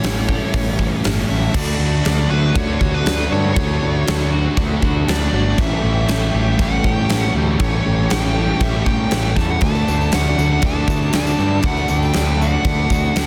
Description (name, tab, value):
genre	rock, shoegaze and dream pop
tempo	119 BPM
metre	4/4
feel	straight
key	D major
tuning	A4 = 440 Hz
part	nasal lead guitar with a parked wah	melody	0.0-13.3 s	B4 to A5	-27 LUFS	equal	overdrive, tape echo
part	twangy electric guitar	arpeggios	0.0-13.3 s	E3 to G4	-35 LUFS	equal	none
part	crunchy overdriven guitar	riff	0.0-13.3 s	A2 to G4	-25 LUFS	equal	reverse reverb
part	thick fuzz guitar	riff	0.0-13.3 s	A2 to D4	-27 LUFS	equal	distortion, analog chorus
part	growling picked electric bass	bass	0.0-13.3 s	G1 to G2	-22 LUFS	equal	overdrive
part	huge arena drum kit	drums	0.0-13.3 s	crash cymbal, hi-hat, kick drum, snare drum	-23 LUFS	equal	none
part	warm analog pad	sustained chords	1.6-13.3 s	D4 to D6	-33 LUFS	equal	none
part	tambourine	percussion	9.8-13.3 s	none	-39 LUFS	equal	none
room	studio reverb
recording	dense, heavily limited modern master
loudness	-18 LUFS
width	mono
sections	0.0-1.6 A section; 1.6-13.3 B section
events	none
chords	0.0 A7; 1.6 Dmaj7; 5.6 A7; 9.6 D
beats	0.04 0.54 1.05 | 1.55 2.06 2.56 3.07 | 3.57 4.08 4.58 5.09 | 5.59 6.10 6.60 7.11 | 7.61 8.12 8.62 9.12 | 9.63 10.13 10.64 11.14 | 11.65 12.15 12.65 13.16